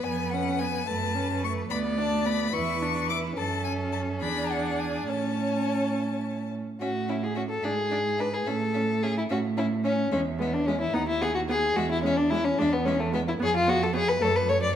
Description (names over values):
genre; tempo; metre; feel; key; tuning
quick classical-period movement for string quartet; 73 BPM (dotted quarters); 6/8; straight; A major; A4 = 440 Hz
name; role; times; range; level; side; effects
clear violin; melody; 0.0-14.6 s; C#5 to D6; -34 LUFS; left 9 dB; none
warm violin; second line; 0.0-14.7 s; A3 to D5; -27 LUFS; left 2 dB; none
clear viola; accompaniment; 0.0-14.6 s; G#3 to E4; -32 LUFS; right 2 dB; none
clear cello; bass; 0.0-14.8 s; D2 to A2; -30 LUFS; right 4 dB; none
room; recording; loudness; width
wet recital hall reverb, RT60 1.8 s; none; -24 LUFS; side -10 dB against mid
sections
0.0-6.8 A section; 6.8-14.8 B section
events
none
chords
0.1 C#7/E#; 0.9 F#m; 1.7 Bm/D; 2.5 E5; 3.4 F#m; 4.2 E7; 5.1 A; 7.6 E7/G# (rootless); 8.5 A; 10.1 E; 10.9 B/D#; 11.8 E; 13.4 C#7/E#; 14.2 F#m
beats
| 0.06 0.89 | 1.71 2.54 | 3.38 4.22 | 5.08 5.95 | 6.81 7.64 | 8.47 9.30 | 10.12 10.94 | 11.76 12.58 | 13.40 14.21